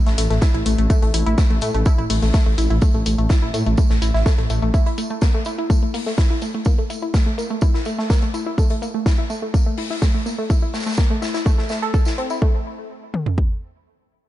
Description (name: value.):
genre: melodic techno.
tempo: 125 BPM.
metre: 4/4.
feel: straight.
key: unclear.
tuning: A4 = 441 Hz.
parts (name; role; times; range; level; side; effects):
warbly dusty pluck; arpeggios; 0.1-12.6 s; A3 to A4; -24 LUFS; left 1 dB; chorus, sidechain pumping, ping-pong delay.
dark detuned saw bass; bass; 0.1-4.7 s; A1 to A2; -19 LUFS; equal; sidechain pumping.
electronic hi-hat; drums; 0.1-12.4 s; none; -31 LUFS; left 3 dB; sidechain pumping on hats, low-pass filter on hats, sidechain pumping on toms, low-pass filter on toms, low-pass filter on snare.
oversized low-tuned drum kit; drums; 0.1-12.4 s; hi-hat, snare drum, tambourine; -32 LUFS; equal; sidechain pumping on hats, high-pass filter on hats, high-pass filter on snare, sidechain pumping on perc, high-pass filter on perc, high-pass filter on room.
house drum kit; drums; 0.4-13.5 s; kick drum, toms; -17 LUFS; equal; none.
room: small room ambience.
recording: dark, warm production, nothing above 10.8 kHz.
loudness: -17 LUFS.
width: side -14 dB against mid.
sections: 0.0-12.4 A section; 12.4-14.3 B section.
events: none.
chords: 0.0 A5; 4.7 N.C..